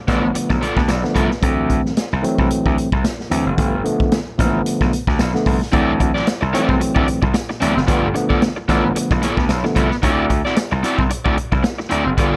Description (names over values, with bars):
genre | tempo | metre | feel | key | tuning
funk | 112 BPM | 4/4 | swing 56% on 16ths | unclear | A4 = 436 Hz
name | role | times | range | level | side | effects
crunchy overdriven guitar | accompaniment | 0.1-1.3, 5.7-12.4 s | B3 to E5 | -24 LUFS | equal | none
overdriven tine electric piano | stabs | 0.1-9.9 s | D3 to D5 | -23 LUFS | equal | none
gritty slap bass | bass | 0.1-12.4 s | F#1 to D2 | -22 LUFS | equal | overdrive
vintage drum kit | drums | 0.1-12.3 s | hi-hat, kick drum, snare drum | -22 LUFS | equal | none
room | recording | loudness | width
light reverb, small room ambience | dark, warm production | -18 LUFS | mono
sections
0.0-12.4 A section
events
tine electric piano fill 0.6-1.4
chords
0.0 G9 (rootless); 1.4 D9; 3.6 G9 (rootless); 5.7 D9; 7.9 G9 (rootless); 10.0 D9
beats
0.35 0.89 | 1.43 1.97 2.50 3.04 | 3.58 4.12 4.66 5.19 | 5.73 6.27 6.81 7.34 | 7.88 8.42 8.96 9.49 | 10.03 10.57 11.11 11.64 | 12.18